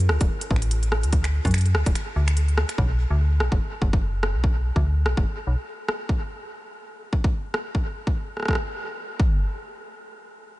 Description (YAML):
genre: IDM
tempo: 145 BPM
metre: 4/4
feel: swing 56% on 16ths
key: unclear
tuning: A4 = 436 Hz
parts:
  - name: metallic FM bass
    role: bass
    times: 0.0-5.6 s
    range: D1 to F#2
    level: -21 LUFS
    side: equal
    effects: none
  - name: industrial drum kit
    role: drums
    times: 0.0-8.6 s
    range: finger snaps, hi-hat, rim click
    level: -30 LUFS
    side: equal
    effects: studio reverb, diffuse ambient delay
  - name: electronic kick drum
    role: drums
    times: 0.2-9.3 s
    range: none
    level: -23 LUFS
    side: equal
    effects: studio reverb
room: digital ambience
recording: nothing above 10.3 kHz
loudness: -21 LUFS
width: side -18 dB against mid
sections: 0.0-9.4 A section; 9.4-10.6 B section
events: none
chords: none